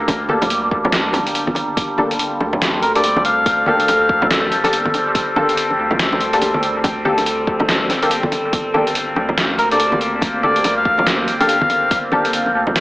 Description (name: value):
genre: deep dubstep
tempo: 142 BPM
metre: 4/4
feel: swing 60% on 16ths, half-time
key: G minor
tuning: A4 = 440 Hz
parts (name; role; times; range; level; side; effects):
- overtone-sweeping drone; sustained chords; 0.0-12.8 s; G3 to A4; -20 LUFS; equal; chorus, built-in reverb, phaser
- filtered dub chord stab; stabs; 0.0-12.3 s; Bb3 to A4; -22 LUFS; left 1 dB; analog chorus, dub echo
- saturated sub bass; bass; 0.0-12.8 s; G1 to D2; -30 LUFS; equal; none
- electronic kick drum; drums; 0.1-12.0 s; none; -23 LUFS; equal; none
- trip hop sampler-style drum kit; drums; 0.1-12.8 s; hi-hat, snare drum; -20 LUFS; equal; none
- bongos and congas; percussion; 0.1-12.7 s; none; -23 LUFS; equal; dub echo
- melodica; melody; 2.8-4.3, 9.6-12.0 s; Bb4 to F5; -18 LUFS; left 1 dB; dub echo
room: moderate echo chamber reverb, RT60 1.9 s, digital ambience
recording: AM radio sound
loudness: -14 LUFS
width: side -18 dB against mid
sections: 0.0-12.8 A section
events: none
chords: 0.0 Gmadd9